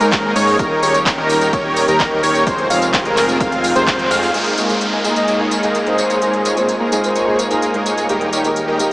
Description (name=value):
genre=EDM, festival progressive house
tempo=128 BPM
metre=4/4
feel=straight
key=Ab major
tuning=A4 = 440 Hz
part: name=lush unison pad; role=sustained chords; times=0.0-8.9 s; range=Eb3 to Bb4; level=-22 LUFS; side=equal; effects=chorus, sidechain pumping
part: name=wide unison lead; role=arpeggios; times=0.0-4.3 s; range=Bb4 to F5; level=-18 LUFS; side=equal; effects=sidechain pumping, analog delay
part: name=big supersaw lead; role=riff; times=0.0-8.9 s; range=G3 to F5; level=-20 LUFS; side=equal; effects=analog chorus, sidechain pumping, low-pass filter, analog delay
part: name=fat analog bass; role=bass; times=0.0-8.9 s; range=Eb1 to Ab2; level=-24 LUFS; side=equal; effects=sidechain pumping
part: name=big-room dance drum kit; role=drums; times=0.0-8.9 s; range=crash cymbal, handclaps, hi-hat, tambourine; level=-22 LUFS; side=equal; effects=overdrive
part: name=electronic kick drum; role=drums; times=0.1-4.0 s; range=none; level=-24 LUFS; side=equal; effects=overdrive
part: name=felt-muted upright piano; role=accompaniment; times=4.3-8.9 s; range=Ab2 to Ab4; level=-22 LUFS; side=equal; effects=sidechain pumping, analog delay
part: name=downlifter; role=sound effects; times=4.3-8.1 s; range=none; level=-26 LUFS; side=equal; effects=none
part: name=breathy flute-like synth lead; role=melody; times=5.2-7.4 s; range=C5 to Eb5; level=-21 LUFS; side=equal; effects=wide subtle chorus, analog delay
room=wet huge ambient reverb, RT60 7.2 s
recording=dreamy mix soaked in reverb, small speaker sound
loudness=-13 LUFS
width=side -21 dB against mid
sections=0.0-4.3 A section; 4.3-8.9 B section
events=drop 0.0-4.3; band accent 3.9; filter sweep on supersaw synth 4.3-8.9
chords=0.0 Absus2; 0.6 Eb; 2.5 Fm; 4.3 Absus2; 8.1 Eb